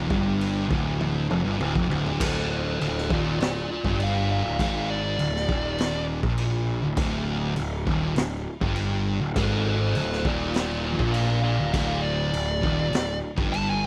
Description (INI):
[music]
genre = stoner and doom metal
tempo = 100 BPM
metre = 4/4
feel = straight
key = D minor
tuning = A4 = 440 Hz
[part]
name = thick fuzz guitar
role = riff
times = 0.0-13.9 s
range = D2 to Bb2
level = -33 LUFS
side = equal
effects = none
[part]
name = thick fuzz guitar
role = riff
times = 0.0-13.9 s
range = D2 to Bb2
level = -31 LUFS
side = equal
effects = distortion
[part]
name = fuzz picked electric bass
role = bass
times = 0.0-13.9 s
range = D1 to Bb1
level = -32 LUFS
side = equal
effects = overdrive
[part]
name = raw garage drum kit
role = drums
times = 0.1-13.7 s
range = crash cymbal, kick drum, snare drum, toms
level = -32 LUFS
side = equal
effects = none
[part]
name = fuzz lead guitar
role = melody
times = 2.2-13.9 s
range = F4 to A5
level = -31 LUFS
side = equal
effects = distortion, slapback echo
[sound]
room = little or no reverb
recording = dry, close 1970s-style studio recording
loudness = -25 LUFS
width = mono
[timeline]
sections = 0.0-2.2 A section; 2.2-13.9 B section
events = drum fill 1.0-2.2; lead electric guitar solo 2.2-13.9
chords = 0.0 Dm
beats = 0.41 1.01 1.61 | 2.20 2.80 3.40 4.00 | 4.60 5.19 5.79 6.39 | 6.99 7.58 8.18 8.78 | 9.37 9.97 10.56 11.15 | 11.75 12.34 12.94 13.53